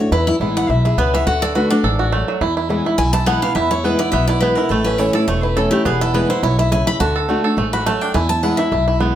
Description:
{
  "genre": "bluegrass",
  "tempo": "209 BPM",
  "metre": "4/4",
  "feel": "swing 54% on 8ths",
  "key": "E mixolydian",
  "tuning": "A4 = 439 Hz",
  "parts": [
    { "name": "picked steel-string acoustic guitar", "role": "melody", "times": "0.0-9.0 s", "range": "E4 to B5", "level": "-20 LUFS", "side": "left 2 dB", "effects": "none" },
    { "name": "picked old ladder-braced acoustic guitar", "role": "accompaniment", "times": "0.0-9.2 s", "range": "E2 to F#4", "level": "-20 LUFS", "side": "equal", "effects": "none" },
    { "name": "bluegrass banjo", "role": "arpeggios", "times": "0.1-9.2 s", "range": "E3 to A4", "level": "-20 LUFS", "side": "right 4 dB", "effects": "none" },
    { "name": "upright bass", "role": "bass", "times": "0.1-9.1 s", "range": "E1 to E2", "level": "-20 LUFS", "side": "equal", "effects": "none" }
  ],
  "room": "moderate studio reverb, RT60 0.7 s",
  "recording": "none",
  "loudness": "-15 LUFS",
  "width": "side -11 dB against mid",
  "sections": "0.0-9.2 A section",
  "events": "steel-string acoustic guitar solo 0.0-9.2",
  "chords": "0.1 E; 1.3 D; 2.4 E; 4.7 A; 5.9 E; 7.0 D; 8.1 E",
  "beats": "| 0.12 0.41 0.69 0.98 | 1.27 1.55 1.84 2.13 | 2.42 2.70 2.99 3.27 | 3.56 3.85 4.13 4.42 | 4.71 4.99 5.28 5.57 | 5.85 6.14 6.43 6.71 | 7.00 7.29 7.57 7.86 | 8.14 8.43 8.72 9.00"
}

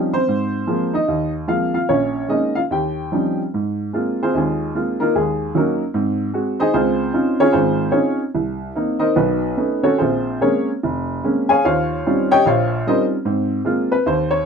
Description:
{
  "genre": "solo jazz",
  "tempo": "148 BPM",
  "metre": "4/4",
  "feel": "swing 64% on 8ths, rubato",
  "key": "Ab major",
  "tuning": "A4 = 440 Hz",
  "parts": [
    { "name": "warm upright piano", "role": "solo", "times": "0.0-14.4 s", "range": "F1 to Ab5", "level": "-17 LUFS", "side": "equal", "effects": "none" }
  ],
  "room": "light reverb",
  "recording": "close, detailed microphones",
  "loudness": "-17 LUFS",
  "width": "side -6 dB against mid",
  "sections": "0.0-3.5 A section; 3.5-14.5 B section",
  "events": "upright piano solo 3.5-14.5",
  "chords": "0.3 Ab69; 1.9 Bbm7; 2.7 Eb13; 3.5 Ab69; 5.2 Ebm7; 6.0 Ab7; 6.7 Dbmaj9; 8.4 Cm7; 9.2 B9; 10.0 Bbm9; 11.6 Eb13; 13.3 Ab69",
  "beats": "| 0.28 0.68 1.08 1.48 | 1.89 2.29 2.71 3.13 | 3.55 3.95 4.36 4.76 | 5.16 5.56 5.95 6.35 | 6.75 7.14 7.54 7.95 | 8.35 8.76 9.17 9.59 | 10.01 10.42 10.84 11.24 | 11.65 12.05 12.46 12.86 | 13.26 13.65 14.04"
}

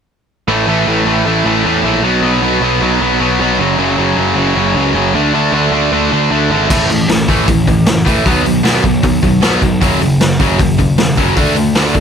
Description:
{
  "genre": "punk rock",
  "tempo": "154 BPM",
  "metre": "4/4",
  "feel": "straight",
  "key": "A major",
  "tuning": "A4 = 440 Hz",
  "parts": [
    { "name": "cranked stack guitar", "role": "riff", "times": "0.5-12.0 s", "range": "F#2 to D4", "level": "-15 LUFS", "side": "right 11 dB", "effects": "overdrive" },
    { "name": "tight distorted guitar", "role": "riff", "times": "0.5-12.0 s", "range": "F#2 to D4", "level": "-15 LUFS", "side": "left 13 dB", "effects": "distortion" },
    { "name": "fuzz picked electric bass", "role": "bass", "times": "0.5-12.0 s", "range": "E1 to E2", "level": "-18 LUFS", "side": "left 1 dB", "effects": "overdrive" },
    { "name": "raw garage drum kit", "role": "drums", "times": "6.7-12.0 s", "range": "crash cymbal, hi-hat, kick drum, snare drum", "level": "-14 LUFS", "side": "left 1 dB", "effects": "none" }
  ],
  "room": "light reverb",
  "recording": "none",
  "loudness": "-10 LUFS",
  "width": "side -7 dB against mid",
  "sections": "0.5-6.7 A section; 6.7-12.0 B section",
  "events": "none",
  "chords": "0.5 A5; 2.0 B5; 3.6 F#5; 5.1 D5; 6.7 A5; 8.3 B5; 9.8 F#5; 11.4 D5",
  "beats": "| 0.48 0.87 1.26 1.65 | 2.04 2.42 2.81 3.20 | 3.59 3.98 4.37 4.76 | 5.15 5.54 5.92 6.31 | 6.70 7.09 7.48 7.87 | 8.26 8.65 9.04 9.42 | 9.81 10.20 10.59 10.98 | 11.37 11.75"
}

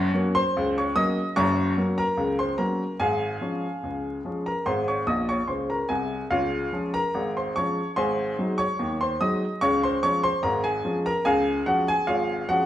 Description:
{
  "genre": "ragtime piano",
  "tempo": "73 BPM",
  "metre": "2/4",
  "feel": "straight",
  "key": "Db major",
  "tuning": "A4 = 444 Hz",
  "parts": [
    { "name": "clear upright piano", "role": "solo", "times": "0.0-12.7 s", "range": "Gb1 to Eb6", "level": "-22 LUFS", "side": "equal", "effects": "none" }
  ],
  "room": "wet large studio reverb, RT60 1.4 s",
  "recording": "band playing live in one room, vinyl crackle",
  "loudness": "-22 LUFS",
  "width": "side -12 dB against mid",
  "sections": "0.0-12.7 A section",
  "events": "upright piano fill 5.1-6.3",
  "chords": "0.0 Gb; 3.0 Db/Ab; 4.7 Ab; 6.3 Db; 8.0 Ab7; 9.6 Db",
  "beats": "0.55 | 1.37 2.19 | 3.02 3.85 | 4.67 5.50 | 6.33 7.15 | 7.97 8.79 | 9.62 10.43 | 11.25 12.07"
}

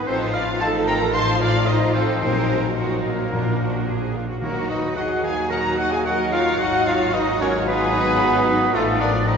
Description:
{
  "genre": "quick classical-period movement for symphony orchestra",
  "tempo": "111 BPM",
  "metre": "4/4",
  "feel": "straight",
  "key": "Eb minor",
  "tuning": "A4 = 442 Hz",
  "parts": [
    { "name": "rich studio violin section", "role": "melody", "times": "0.0-9.4 s", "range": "A4 to C6", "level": "-31 LUFS", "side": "left 3 dB", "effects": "none" },
    { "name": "bright silver concert flute", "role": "second line", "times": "0.0-9.4 s", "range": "A4 to C6", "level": "-28 LUFS", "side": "left 1 dB", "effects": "none" },
    { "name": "clear clarinet", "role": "second line", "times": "0.0-9.4 s", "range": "A3 to C5", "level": "-27 LUFS", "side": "equal", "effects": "none" },
    { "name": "clear oboe", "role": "second line", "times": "0.0-9.4 s", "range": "A4 to C6", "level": "-27 LUFS", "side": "right 1 dB", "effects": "none" },
    { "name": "rich studio violin section", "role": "second line", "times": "0.0-9.4 s", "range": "F4 to A5", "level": "-30 LUFS", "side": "left 2 dB", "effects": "none" },
    { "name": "dark trumpet", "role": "stabs", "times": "0.0-9.4 s", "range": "A3 to C5", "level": "-28 LUFS", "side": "right 1 dB", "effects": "none" },
    { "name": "warm studio cello section", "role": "bass", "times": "0.0-9.4 s", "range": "Eb4 to Bb4", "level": "-28 LUFS", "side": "right 2 dB", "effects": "none" },
    { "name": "rich studio viola section", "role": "accompaniment", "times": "0.1-9.4 s", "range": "F3 to Eb4", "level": "-27 LUFS", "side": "right 2 dB", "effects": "none" },
    { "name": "dark French horn section", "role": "sustained chords", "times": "0.1-9.4 s", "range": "F3 to Eb4", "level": "-30 LUFS", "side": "left 4 dB", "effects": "none" },
    { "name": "warm studio double bass section", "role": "bass", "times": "0.1-9.4 s", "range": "Ab1 to Eb2", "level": "-27 LUFS", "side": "equal", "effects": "none" },
    { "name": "timpani", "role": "percussion", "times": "2.2-5.2 s", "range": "Bb2 to Eb3", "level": "-29 LUFS", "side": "left 2 dB", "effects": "none" }
  ],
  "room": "wet cathedral reverb, RT60 6.7 s",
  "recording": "recorded in a church or concert hall, nothing above 7.7 kHz",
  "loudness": "-18 LUFS",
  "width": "side -6 dB against mid",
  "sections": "0.0-9.4 A section",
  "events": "none",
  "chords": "0.1 F7/A; 2.2 Ebm/Bb; 3.3 Bb; 4.4 Ebm; 6.6 Abm7; 8.7 F7/A",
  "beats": "| 0.08 0.61 1.15 1.69 | 2.23 2.78 3.34 3.88 | 4.43 4.98 5.52 6.06 | 6.60 7.14 7.68 8.21 | 8.74 9.27"
}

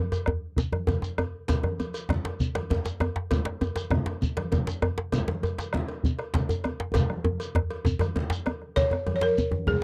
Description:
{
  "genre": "west african traditional, West African drum ensemble",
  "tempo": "132 BPM (dotted quarters)",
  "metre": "12/8",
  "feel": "straight",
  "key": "unclear",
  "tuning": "A4 = 440 Hz",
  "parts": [
    { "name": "bombo", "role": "percussion", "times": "0.1-9.8 s", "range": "none", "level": "-32 LUFS", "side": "equal", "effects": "none" },
    { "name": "cowbell", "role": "percussion", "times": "0.1-9.4 s", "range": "none", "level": "-40 LUFS", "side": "equal", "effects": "none" },
    { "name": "djembe", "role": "percussion", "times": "0.1-9.8 s", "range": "none", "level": "-31 LUFS", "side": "equal", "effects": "none" },
    { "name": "shekere", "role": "percussion", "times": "0.1-9.5 s", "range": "none", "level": "-39 LUFS", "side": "equal", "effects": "none" },
    { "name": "congas", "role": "percussion", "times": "0.3-9.8 s", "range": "none", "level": "-36 LUFS", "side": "equal", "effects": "none" },
    { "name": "djembe", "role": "percussion", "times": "0.3-9.5 s", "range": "none", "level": "-34 LUFS", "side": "equal", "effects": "none" },
    { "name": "balafon", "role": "melody", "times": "8.8-9.8 s", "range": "G#4 to C#5", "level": "-27 LUFS", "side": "equal", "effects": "none" }
  ],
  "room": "moderate booth ambience, RT60 0.2 s",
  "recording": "dry, close 1970s-style studio recording",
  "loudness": "-28 LUFS",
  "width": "mono",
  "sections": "0.0-8.8 A section; 8.8-9.8 B section",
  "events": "drum fill 6.9-8.8",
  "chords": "none",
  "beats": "0.12 0.57 1.03 | 1.49 1.94 2.40 2.85 | 3.31 3.76 4.22 4.67 | 5.13 5.58 6.04 6.49 | 6.95 7.40 7.86 8.31 | 8.77 9.22 9.67"
}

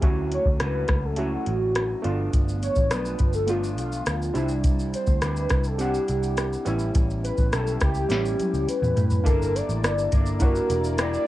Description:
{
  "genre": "indie pop, bedroom pop",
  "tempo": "104 BPM",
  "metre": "4/4",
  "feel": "straight",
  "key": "unclear",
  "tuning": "A4 = 441 Hz",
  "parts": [
    { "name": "electric guitar through a small old amp", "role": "accompaniment", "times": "0.0-11.3 s", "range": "G2 to Bb4", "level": "-35 LUFS", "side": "left 3 dB", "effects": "wide subtle chorus, vibrato effect, cassette tape" },
    { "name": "warm analog keys", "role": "accompaniment", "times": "0.0-11.3 s", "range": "G3 to F#5", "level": "-30 LUFS", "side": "right 2 dB", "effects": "chorus, cassette tape" },
    { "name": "vintage muted picked electric bass", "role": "bass", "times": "0.0-11.2 s", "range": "E1 to A2", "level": "-27 LUFS", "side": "equal", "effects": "none" },
    { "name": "soft vintage rhythm box", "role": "drums", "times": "0.0-11.3 s", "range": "hi-hat, kick drum, rim click, shaker, snare drum, toms", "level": "-24 LUFS", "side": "equal", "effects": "cassette tape" },
    { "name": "warm velvety synth lead", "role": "melody", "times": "0.3-11.3 s", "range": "F4 to D5", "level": "-28 LUFS", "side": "equal", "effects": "wide subtle chorus, cassette tape" },
    { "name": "phased analog pad", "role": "sustained chords", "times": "9.2-11.3 s", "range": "Bb3 to D6", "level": "-36 LUFS", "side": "right 2 dB", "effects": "phaser, chorus, cassette tape" }
  ],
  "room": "light reverb",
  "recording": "home recording on cassette",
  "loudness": "-21 LUFS",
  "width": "side -15 dB against mid",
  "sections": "0.0-9.3 A section; 9.3-11.3 B section",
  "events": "drum fill 8.1-9.3",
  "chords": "0.0 Dmaj7; 2.0 G7; 4.4 Cadd9; 6.7 A7; 9.3 Gm6",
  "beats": "| 0.03 0.60 1.18 1.76 | 2.33 2.91 3.49 4.07 | 4.64 5.22 5.80 6.38 | 6.95 7.53 8.11 8.68 | 9.26 9.84 10.41 10.99"
}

